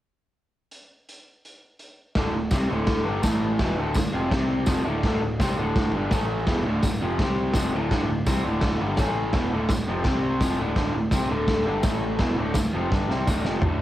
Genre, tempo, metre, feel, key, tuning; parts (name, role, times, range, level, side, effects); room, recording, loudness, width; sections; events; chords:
garage rock duo or trio; 167 BPM; 4/4; straight; D minor; A4 = 440 Hz
raw garage drum kit; drums; 0.7-13.7 s; crash cymbal, hi-hat, kick drum, snare drum, toms; -26 LUFS; equal; cassette tape
raw garage guitar; riff; 2.2-13.8 s; D2 to C4; -24 LUFS; equal; overdrive, cassette tape
growling picked electric bass; bass; 2.2-13.8 s; D1 to C2; -31 LUFS; equal; overdrive
tambourine; percussion; 2.5-13.4 s; -41 LUFS; left 1 dB
moderate spring reverb, RT60 1.9 s, studio ambience; home recording on cassette; -22 LUFS; side -14 dB against mid
0.7-2.2 A section; 2.2-13.6 B section
drum fill 12.9-13.6
0.7 N.C.; 2.2 D5; 3.2 A5; 3.6 Dm; 4.3 C5; 4.7 Dm; 6.1 A5; 6.5 Dm; 7.2 C5; 7.5 Dm; 9.0 A5; 9.3 Dm; 10.1 C5; 10.4 Dm; 11.9 A5; 12.2 Dm